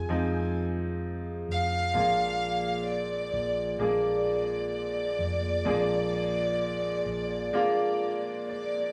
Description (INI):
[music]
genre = pop ballad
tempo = 65 BPM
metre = 4/4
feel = straight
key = unclear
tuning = A4 = 441 Hz
[part]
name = warm chamber violin section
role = melody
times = 0.0-8.9 s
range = D5 to Ab5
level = -33 LUFS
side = equal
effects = none
[part]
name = clear baby grand piano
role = accompaniment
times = 0.0-8.9 s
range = Bb2 to D5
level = -32 LUFS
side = equal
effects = none
[part]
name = glass harmonica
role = sustained chords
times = 0.0-8.9 s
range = Bb3 to D5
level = -37 LUFS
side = equal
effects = none
[part]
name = hollow-body short-scale fingered electric bass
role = bass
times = 0.0-7.5 s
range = F1 to Bb1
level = -38 LUFS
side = equal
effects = none
[sound]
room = moderate large studio reverb, RT60 0.9 s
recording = band playing live in one room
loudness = -29 LUFS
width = mono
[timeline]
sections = 0.0-8.9 A section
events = grand piano fill 8.0-8.9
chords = 0.0 Fm; 1.9 Bb7